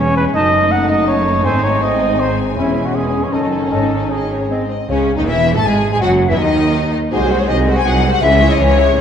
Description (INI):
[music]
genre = classical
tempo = 161 BPM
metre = 3/4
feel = rubato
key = C# minor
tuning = A4 = 438 Hz
[part]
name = warm symphonic violin section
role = melody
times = 0.0-9.0 s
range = B#4 to A5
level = -23 LUFS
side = left 7 dB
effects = none
[part]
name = clear symphonic violin section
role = second line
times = 0.0-9.0 s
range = C#4 to C#5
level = -23 LUFS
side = left 3 dB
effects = none
[part]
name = hollow concert flute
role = second line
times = 0.0-9.0 s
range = B#4 to A5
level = -22 LUFS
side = left 3 dB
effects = none
[part]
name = warm clarinet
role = second line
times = 0.0-4.6 s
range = B#3 to D#4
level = -27 LUFS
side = left 2 dB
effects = none
[part]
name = rich symphonic viola section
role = accompaniment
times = 0.0-9.0 s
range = C#3 to E4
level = -21 LUFS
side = right 1 dB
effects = none
[part]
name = mellow trumpet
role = stabs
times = 0.0-4.7 s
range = E4 to F#5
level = -18 LUFS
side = right 1 dB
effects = none
[part]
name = rich symphonic cello section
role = bass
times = 0.0-9.0 s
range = B#1 to A2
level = -21 LUFS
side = right 3 dB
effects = none
[part]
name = rich symphonic double bass section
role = bass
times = 0.0-9.0 s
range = E1 to D#2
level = -20 LUFS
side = right 3 dB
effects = none
[part]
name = warm French horn section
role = sustained chords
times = 0.3-8.3 s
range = C#3 to F#4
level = -22 LUFS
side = left 4 dB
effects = none
[part]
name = warm trombone section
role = sustained chords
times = 4.9-8.3 s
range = C#3 to A3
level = -25 LUFS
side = right 3 dB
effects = none
[sound]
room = wet concert hall reverb, RT60 1.9 s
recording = dark, warm production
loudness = -12 LUFS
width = side -8 dB against mid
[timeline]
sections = 0.0-4.9 A section; 4.9-9.0 B section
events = none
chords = 0.4 D#dim/F#; 1.5 G#; 2.6 C#m/E; 3.3 D#m7b5/F#; 3.7 G#sus4; 4.5 G#; 4.9 C#m; 6.0 D#m/F#; 7.1 G#7/B#; 8.2 C#m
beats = | 0.35 0.72 1.09 | 1.46 1.83 2.20 | 2.58 2.95 3.33 | 3.72 4.11 4.50 | 4.89 5.27 5.64 | 6.02 6.39 6.76 | 7.12 7.49 7.86 | 8.22 8.59 8.96